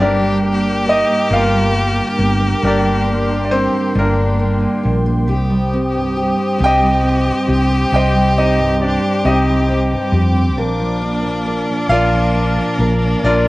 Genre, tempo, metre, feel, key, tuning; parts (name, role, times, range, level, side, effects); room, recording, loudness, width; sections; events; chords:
acoustic folk-pop ballad; 45 BPM (dotted quarters); 6/8; straight; C minor; A4 = 440 Hz
bright grand piano; melody; 0.0-13.5 s; Bb3 to G5; -17 LUFS; equal
bright violin; second line; 0.0-13.5 s; D4 to G4; -23 LUFS; left 1 dB
fingerpicked steel-string acoustic guitar; accompaniment; 0.0-13.5 s; G2 to Bb4; -21 LUFS; equal
sweeping resonant pad; sustained chords; 0.0-13.5 s; Bb4 to Eb6; -26 LUFS; left 1 dB; chorus
vibraphone with soft mallets; arpeggios; 0.0-13.5 s; F3 to C4; -22 LUFS; right 3 dB
hollow-body short-scale fingered electric bass; bass; 0.0-13.5 s; G1 to F2; -18 LUFS; equal
light reverb; worn, warbling old tape, cassette tape, warbly pitch drift; -13 LUFS; side -19 dB against mid
0.0-13.5 A section
0.0 Gm; 5.3 Cm; 10.6 Bb